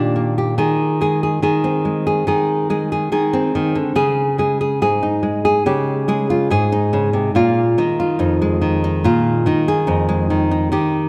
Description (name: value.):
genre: folk.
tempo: 71 BPM.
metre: 4/4.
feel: straight.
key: unclear.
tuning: A4 = 440 Hz.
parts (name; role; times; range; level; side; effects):
nylon-string guitar; solo; 0.0-11.1 s; F2 to Ab4; -18 LUFS; equal; none.
room: wet concert hall reverb, RT60 2.3 s.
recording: none.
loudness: -18 LUFS.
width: mono.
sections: 0.0-10.7 A section.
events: none.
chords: 0.0 Ebmaj7; 0.6 Ab/Eb; 4.0 Dbsus2; 7.3 Bb7sus4.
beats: | 0.59 1.43 2.27 3.12 | 3.96 4.80 5.65 6.49 | 7.33 8.18 9.02 9.86 | 10.71.